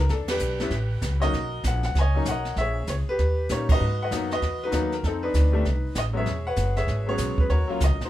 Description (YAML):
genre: jazz piano trio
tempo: 194 BPM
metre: 4/4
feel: swing 62% on 8ths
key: unclear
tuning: A4 = 438 Hz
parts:
  - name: bright upright piano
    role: melody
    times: 0.0-8.1 s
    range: Eb3 to G#5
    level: -27 LUFS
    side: left 1 dB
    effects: none
  - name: upright bass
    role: bass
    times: 0.0-8.1 s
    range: E1 to A#2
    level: -25 LUFS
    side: equal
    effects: none
  - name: jazz brush drum kit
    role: drums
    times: 0.1-8.1 s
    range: brushed snare drum, crash cymbal, hi-hat, kick drum, ride cymbal, snare drum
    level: -29 LUFS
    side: right 2 dB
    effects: none
room: moderate studio reverb, RT60 0.5 s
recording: minimal, uncompressed stereo recording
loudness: -22 LUFS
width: side -14 dB against mid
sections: 0.0-8.1 A section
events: band accent 0.3, 3.6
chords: 0.1 Em7; 0.7 A9; 1.3 Bmaj9; 2.6 A#m7b5; 3.2 D#7b13; 3.8 G#m7; 5.0 F13; 6.3 E69; 7.5 D#m7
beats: | 0.10 0.41 0.72 1.03 | 1.34 1.64 1.95 2.26 | 2.57 2.88 3.19 3.50 | 3.80 4.11 4.42 4.73 | 5.04 5.35 5.66 5.96 | 6.27 6.58 6.89 7.20 | 7.51 7.82